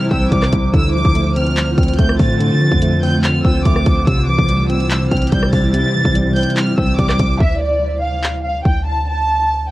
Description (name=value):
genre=hip hop, trap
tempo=144 BPM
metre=4/4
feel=half-time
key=D minor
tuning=A4 = 438 Hz
part: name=warm studio violin section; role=melody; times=0.0-9.7 s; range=D5 to A6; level=-20 LUFS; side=right 1 dB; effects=cassette tape
part: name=tine electric piano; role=accompaniment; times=0.0-7.4 s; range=C3 to C4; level=-17 LUFS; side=equal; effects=overdrive, cassette tape
part: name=granular cloud pad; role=sustained chords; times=0.0-7.4 s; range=C3 to C5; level=-23 LUFS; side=equal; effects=built-in reverb, cassette tape
part: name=clean 808-style bass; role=bass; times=0.1-9.7 s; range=C2 to D3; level=-20 LUFS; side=equal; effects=none
part: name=trap drum kit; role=drums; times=0.1-8.8 s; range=handclaps, hi-hat, kick drum, rim click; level=-17 LUFS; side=equal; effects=cassette tape
room=light reverb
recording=home recording on cassette, vinyl crackle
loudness=-13 LUFS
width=side -17 dB against mid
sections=0.0-7.4 A section; 7.4-9.7 B section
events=break 7.4-9.7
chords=0.0 C; 0.7 Dm7; 4.1 C; 7.4 Dm